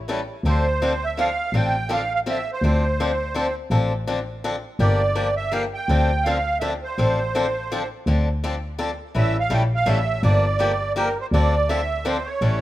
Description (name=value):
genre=acoustic string swing (jazz manouche)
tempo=165 BPM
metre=3/4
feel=swing 61% on 8ths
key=D minor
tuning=A4 = 440 Hz
part: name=dark double bass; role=bass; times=0.0-12.6 s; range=G1 to D2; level=-23 LUFS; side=equal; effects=none
part: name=picked swing-style acoustic guitar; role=accompaniment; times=0.1-12.6 s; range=D3 to A4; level=-25 LUFS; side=left 2 dB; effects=none
part: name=musette accordion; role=melody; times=0.5-12.6 s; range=Bb4 to G5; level=-24 LUFS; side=right 3 dB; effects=none
room=light reverb, small room ambience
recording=rough home demo mix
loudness=-19 LUFS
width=side -15 dB against mid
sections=0.4-12.6 A section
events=none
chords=0.4 Dm7; 4.8 Gm7; 5.9 Dm7; 9.2 A7; 10.2 Gm7; 11.3 Dm9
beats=0.08 | 0.44 0.81 1.17 | 1.53 1.90 2.26 | 2.62 2.99 3.35 | 3.71 4.08 4.44 | 4.80 5.16 5.53 | 5.89 6.25 6.62 | 6.98 7.34 7.70 | 8.06 8.43 8.79 | 9.15 9.52 9.88 | 10.24 10.60 10.96 | 11.33 11.69 12.05 | 12.41